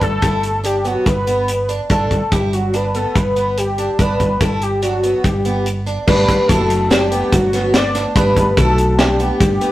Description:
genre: progressive instrumental, band music in an uneven meter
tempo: 144 BPM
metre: 5/4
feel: straight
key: G major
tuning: A4 = 442 Hz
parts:
  - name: fat analog lead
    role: melody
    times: 0.0-9.7 s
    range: F#4 to D5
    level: -18 LUFS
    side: left 1 dB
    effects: chorus
  - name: picked twelve-string acoustic guitar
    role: arpeggios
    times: 0.0-9.7 s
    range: B3 to E4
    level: -24 LUFS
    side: right 3 dB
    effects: none
  - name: woody fretless electric bass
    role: bass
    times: 0.0-9.6 s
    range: F#1 to B1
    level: -20 LUFS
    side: equal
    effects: none
  - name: tight funk drum kit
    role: drums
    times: 0.0-9.7 s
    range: crash cymbal, hi-hat, kick drum, snare drum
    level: -18 LUFS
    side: equal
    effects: none
  - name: vibraphone with medium mallets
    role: second line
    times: 6.1-9.7 s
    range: D4 to B4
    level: -24 LUFS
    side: equal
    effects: none
  - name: mellow tonewheel organ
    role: accompaniment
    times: 6.1-9.7 s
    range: A3 to F#5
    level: -28 LUFS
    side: left 1 dB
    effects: none
room: wet stone room reverb, RT60 1.0 s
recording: rough rehearsal-room recording, tube saturation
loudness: -14 LUFS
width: side -15 dB against mid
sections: 0.0-6.1 A section; 6.1-9.7 B section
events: none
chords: 0.0 G; 6.1 Gmaj7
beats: 0.22 0.64 1.06 1.48 | 1.89 2.31 2.73 3.15 3.57 | 3.98 4.40 4.82 5.24 5.66 | 6.07 6.49 6.90 7.32 7.74 | 8.15 8.57 8.98 9.40

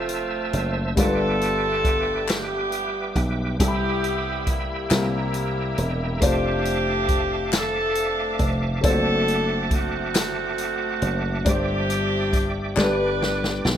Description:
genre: slow gospel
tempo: 46 BPM (dotted quarters)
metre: 6/8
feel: straight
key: unclear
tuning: A4 = 440 Hz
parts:
  - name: clear saxophone section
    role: melody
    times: 0.0-13.8 s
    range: G3 to B4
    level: -25 LUFS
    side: right 1 dB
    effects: none
  - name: warm upright piano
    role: accompaniment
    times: 0.0-13.8 s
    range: G2 to B5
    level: -27 LUFS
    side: left 2 dB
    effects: none
  - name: bright tonewheel organ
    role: sustained chords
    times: 0.0-13.8 s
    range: B4 to E6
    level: -32 LUFS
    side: right 2 dB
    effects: fast rotary speaker, overdrive, chorus vibrato
  - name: dry thumbed slap bass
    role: bass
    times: 0.0-13.8 s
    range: E1 to C2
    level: -27 LUFS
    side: equal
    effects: none
  - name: swinging big-band drum kit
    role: drums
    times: 0.1-13.8 s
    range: hi-hat, kick drum, snare drum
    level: -25 LUFS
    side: equal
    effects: none
  - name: group handclap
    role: percussion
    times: 2.3-13.2 s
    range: none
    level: -31 LUFS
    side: left 6 dB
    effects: none
room: light reverb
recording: faint mains hum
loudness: -20 LUFS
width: side -10 dB against mid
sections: 0.0-13.8 A section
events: drum fill 12.8-13.8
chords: 0.0 Fmaj7; 1.0 G7; 3.6 Cmaj7; 4.9 C7; 6.2 F6; 8.8 D7/F#; 11.5 Gsus4; 12.8 G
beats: | 0.97 2.28 | 3.60 4.91 | 6.22 7.53 | 8.84 10.15 | 11.46 12.77

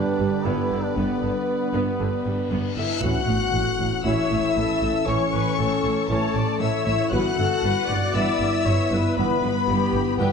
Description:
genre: cinematic, hybrid orchestral and electronic film score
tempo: 117 BPM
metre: 4/4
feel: straight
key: unclear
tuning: A4 = 440 Hz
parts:
  - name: warm duduk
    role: melody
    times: 0.0-2.7 s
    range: B3 to E4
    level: -32 LUFS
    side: right 3 dB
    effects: tape echo
  - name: warm symphonic violin section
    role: melody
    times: 0.0-10.3 s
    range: D5 to F#6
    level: -30 LUFS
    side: left 5 dB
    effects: none
  - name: warm chamber violin section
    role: second line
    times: 0.0-10.3 s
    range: G4 to F#5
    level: -28 LUFS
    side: left 6 dB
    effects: none
  - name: dark analog pad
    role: sustained chords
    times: 0.0-10.3 s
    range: E3 to B4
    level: -31 LUFS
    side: equal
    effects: chorus, phaser
  - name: mellow French horn section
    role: sustained chords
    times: 0.0-10.3 s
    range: G3 to B4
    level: -27 LUFS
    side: left 4 dB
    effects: none
  - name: warm trombone section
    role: sustained chords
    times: 0.0-10.3 s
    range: D3 to C#4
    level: -31 LUFS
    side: right 3 dB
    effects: none
  - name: rich symphonic cello section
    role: bass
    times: 0.0-10.3 s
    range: G2 to A2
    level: -28 LUFS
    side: right 3 dB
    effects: none
  - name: rich symphonic double bass section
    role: bass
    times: 0.0-10.3 s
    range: G1 to A1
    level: -28 LUFS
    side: right 2 dB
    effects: none
  - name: rich symphonic viola section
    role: accompaniment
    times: 0.2-10.3 s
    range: D3 to D5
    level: -30 LUFS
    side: left 1 dB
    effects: none
  - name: reverse cymbal and sub drop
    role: sound effects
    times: 2.4-5.1 s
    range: none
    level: -35 LUFS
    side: left 1 dB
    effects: none
room: moderate scoring stage reverb, RT60 1.9 s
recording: dark, warm production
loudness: -20 LUFS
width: side -6 dB against mid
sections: 0.0-3.0 A section; 3.0-10.3 B section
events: reverse cymbal 2.4-3.0; impact 3.0-5.1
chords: 0.0 G; 3.0 A; 7.1 Em/G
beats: 0.46 | 0.97 1.48 2.00 2.51 | 3.02 3.53 4.05 4.56 | 5.07 5.58 6.10 6.61 | 7.12 7.64 8.15 8.66 | 9.18 9.69 10.20

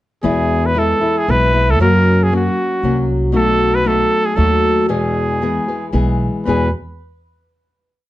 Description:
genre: mexican folk, mariachi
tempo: 116 BPM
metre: 3/4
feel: straight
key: E major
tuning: A4 = 440 Hz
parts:
  - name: clear trumpet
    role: melody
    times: 0.2-6.7 s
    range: F#4 to B4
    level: -17 LUFS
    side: right 1 dB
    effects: plate reverb
  - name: nylon-string guitar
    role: accompaniment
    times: 0.2-6.7 s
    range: E2 to G#4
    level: -18 LUFS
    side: left 3 dB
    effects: none
  - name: upright bass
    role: bass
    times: 0.2-6.7 s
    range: B1 to F#2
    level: -18 LUFS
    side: right 1 dB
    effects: none
room: moderate small room reverb, RT60 0.6 s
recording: dark, warm production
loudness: -13 LUFS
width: side -15 dB against mid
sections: 0.2-6.5 A section; 6.5-8.0 final chord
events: none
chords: 0.2 E; 1.8 F#; 3.3 B7; 4.9 E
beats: | 0.24 0.76 1.28 | 1.80 2.32 2.83 | 3.35 3.87 4.38 | 4.90 5.42 5.94 | 6.46

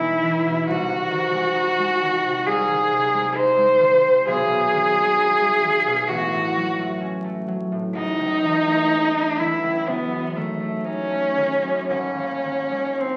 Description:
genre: classical, romantic duo for cello and harp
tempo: 55-68 BPM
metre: 4/4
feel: rubato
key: unclear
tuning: A4 = 440 Hz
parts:
  - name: rich cello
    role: melody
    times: 0.0-13.2 s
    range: A3 to B#4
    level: -21 LUFS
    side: equal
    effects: none
  - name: concert harp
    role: accompaniment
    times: 0.0-13.2 s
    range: F#1 to D#4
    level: -29 LUFS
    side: equal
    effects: none
room: wet recital hall reverb, RT60 1.3 s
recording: very old 78 rpm record, vinyl crackle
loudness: -21 LUFS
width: mono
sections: 0.0-13.2 A section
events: none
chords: 0.0 Emaj7; 0.7 G#/B#; 4.3 G#m/B; 6.1 F#m/A; 8.0 F#m7; 9.9 D#dim/F#; 11.9 G#5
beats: | 0.67 1.56 2.46 3.36 | 4.28 5.19 6.09 7.02 | 7.97 8.92 9.88 10.86 | 11.90 12.99

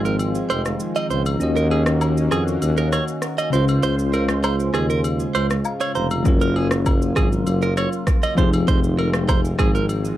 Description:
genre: afrobeats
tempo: 99 BPM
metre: 4/4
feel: straight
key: Db major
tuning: A4 = 439 Hz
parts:
  - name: bell-like tine electric piano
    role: accompaniment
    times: 0.0-10.2 s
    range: Db3 to Bb5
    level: -24 LUFS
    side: left 3 dB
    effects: fast stereo tremolo
  - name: warm analog pad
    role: sustained chords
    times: 0.0-10.2 s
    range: Db3 to C5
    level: -27 LUFS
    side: right 2 dB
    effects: chorus
  - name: warm tuba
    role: bass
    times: 0.0-10.1 s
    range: F1 to F2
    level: -22 LUFS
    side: equal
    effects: none
  - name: direct-recorded clean electric guitar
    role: riff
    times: 0.1-9.9 s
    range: Ab4 to Eb5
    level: -25 LUFS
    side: right 6 dB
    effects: tape echo
  - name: deep house drum kit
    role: drums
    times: 0.1-10.2 s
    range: kick drum, rim click, shaker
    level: -22 LUFS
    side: equal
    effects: none
  - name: agogo bells and woodblock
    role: percussion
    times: 0.2-10.0 s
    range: none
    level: -32 LUFS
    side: left 6 dB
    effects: none
room: light reverb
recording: dark, warm production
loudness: -17 LUFS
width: side -13 dB against mid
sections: 0.0-10.2 A section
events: break 0.0-6.3; tine electric piano fill 5.3-6.3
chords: 0.0 Fm7; 1.4 Ebm7; 3.5 Dbmaj7; 6.3 Gbmaj7; 8.4 Fm7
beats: 0.19 0.80 | 1.41 2.01 2.62 3.23 | 3.83 4.44 5.04 5.65 | 6.25 6.86 7.47 8.07 | 8.68 9.29 9.89

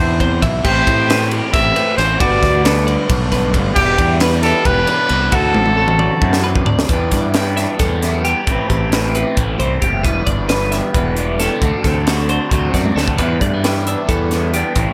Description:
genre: math rock and midwest emo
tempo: 268 BPM (eighths)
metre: 7/8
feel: straight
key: E minor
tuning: A4 = 440 Hz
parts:
  - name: clear trumpet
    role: melody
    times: 0.0-6.5 s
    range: G4 to E5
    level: -20 LUFS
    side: equal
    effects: digital delay
  - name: electric guitar through a small old amp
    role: accompaniment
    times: 0.0-14.9 s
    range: E2 to B4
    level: -26 LUFS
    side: equal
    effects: none
  - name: twelve-string electric guitar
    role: arpeggios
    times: 0.0-14.9 s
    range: F#4 to E5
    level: -25 LUFS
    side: equal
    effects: none
  - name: fuzz fingered electric bass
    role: bass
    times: 0.0-14.8 s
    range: E1 to A2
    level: -21 LUFS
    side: equal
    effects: overdrive
  - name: crisp fusion drum kit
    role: drums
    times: 0.2-14.9 s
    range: crash cymbal, hi-hat, kick drum, ride cymbal, snare drum, toms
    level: -21 LUFS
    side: equal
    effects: none
  - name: crunchy overdriven guitar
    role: riff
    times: 0.6-14.9 s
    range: G2 to F#4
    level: -25 LUFS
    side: equal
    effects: phaser
room: light reverb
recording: none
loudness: -16 LUFS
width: mono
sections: 0.0-6.9 A section; 6.9-14.9 B section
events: drum fill 5.6-6.9, 12.8-13.2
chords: 0.0 Cmaj7; 0.6 Am9; 2.2 Gmaj9; 3.8 Em7; 5.3 D9; 6.9 Em7; 8.5 Am9; 10.0 Em7; 11.6 D7; 13.2 Em7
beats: 0.20 0.42 | 0.65 0.87 1.09 1.31 1.54 1.76 1.98 | 2.21 2.43 2.65 2.88 3.10 3.32 3.54 | 3.77 3.99 4.21 4.44 4.66 4.88 5.11 | 5.33 5.55 5.78 6.00 6.22 6.45 6.67 | 6.89 7.12 7.34 7.57 7.79 8.02 8.24 | 8.46 8.69 8.91 9.14 9.36 9.59 9.81 | 10.04 10.26 10.49 10.71 10.94 11.16 11.39 | 11.61 11.84 12.06 12.29 12.51 12.73 12.96 | 13.19 13.41 13.63 13.86 14.09 14.31 14.54 | 14.76

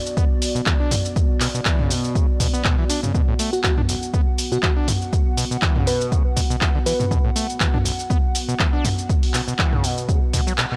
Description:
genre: acid house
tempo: 121 BPM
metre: 4/4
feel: swing 55% on 16ths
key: B minor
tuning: A4 = 441 Hz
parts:
  - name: dark analog pad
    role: sustained chords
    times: 0.0-10.8 s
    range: B3 to F#5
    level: -32 LUFS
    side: equal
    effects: chorus, sidechain pumping
  - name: punchy analog drum machine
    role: drums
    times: 0.1-10.7 s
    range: handclaps, hi-hat, shaker, toms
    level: -26 LUFS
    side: equal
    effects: none
  - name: overdriven acid bass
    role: riff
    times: 0.2-10.8 s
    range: B1 to D4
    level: -30 LUFS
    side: equal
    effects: distortion, sidechain pumping, tape echo
  - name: electronic kick drum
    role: drums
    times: 0.2-10.4 s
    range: none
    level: -22 LUFS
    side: equal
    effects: none
  - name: bell-like FM electric piano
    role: melody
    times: 3.5-7.2 s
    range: F#4 to B4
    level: -29 LUFS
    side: equal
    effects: chorus, tape echo
room: digital ambience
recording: dry, gritty hardware recording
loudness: -20 LUFS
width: mono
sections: 0.0-10.8 A section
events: kick drops out 10.6; band accent 10.6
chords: 0.0 Bm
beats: 0.17 0.67 | 1.16 1.66 2.15 2.65 | 3.14 3.64 4.14 4.63 | 5.13 5.62 6.12 6.62 | 7.11 7.61 8.10 8.60 | 9.10 9.59 10.09 10.58

